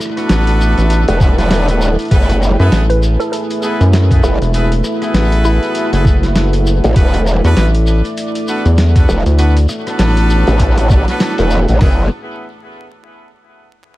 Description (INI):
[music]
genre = glitch hop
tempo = 99 BPM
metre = 4/4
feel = swing 59% on 16ths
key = F# minor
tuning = A4 = 441 Hz
[part]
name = dark analog pad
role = sustained chords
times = 0.0-12.1 s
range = A3 to E5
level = -20 LUFS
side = equal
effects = chorus, vintage 12-bit sampler grit, sidechain pumping
[part]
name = boom bap sampler-style drum kit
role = drums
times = 0.0-11.8 s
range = hi-hat, rim click, snare drum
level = -20 LUFS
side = equal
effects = small room ambience
[part]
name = shekere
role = percussion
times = 0.0-11.8 s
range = none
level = -31 LUFS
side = left 2 dB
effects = tape echo
[part]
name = brilliant horn section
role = stabs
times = 0.2-12.0 s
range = B3 to B4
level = -21 LUFS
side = equal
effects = sidechain pumping, tape echo
[part]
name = rubbery square bass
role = bass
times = 0.3-10.4 s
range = E1 to F#2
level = -11 LUFS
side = equal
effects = none
[part]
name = growl bass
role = bass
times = 1.1-12.1 s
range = E1 to A1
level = -13 LUFS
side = equal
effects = chorus, tube saturation
[part]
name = boom bap sampler-style drum kit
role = drums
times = 1.2-12.0 s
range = hi-hat, kick drum, snare drum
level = -12 LUFS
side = equal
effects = small room ambience
[part]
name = woody wave-folded pluck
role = melody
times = 2.9-6.1 s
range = E4 to B4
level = -24 LUFS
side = right 1 dB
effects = none
[sound]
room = little or no reverb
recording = echo-heavy mix, vinyl crackle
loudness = -10 LUFS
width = side -17 dB against mid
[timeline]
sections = 0.0-11.8 A section; 11.8-14.0 B section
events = drop 0.0-11.8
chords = 0.0 E7sus4; 2.1 F#m11; 7.0 E7sus4; 11.8 F#m11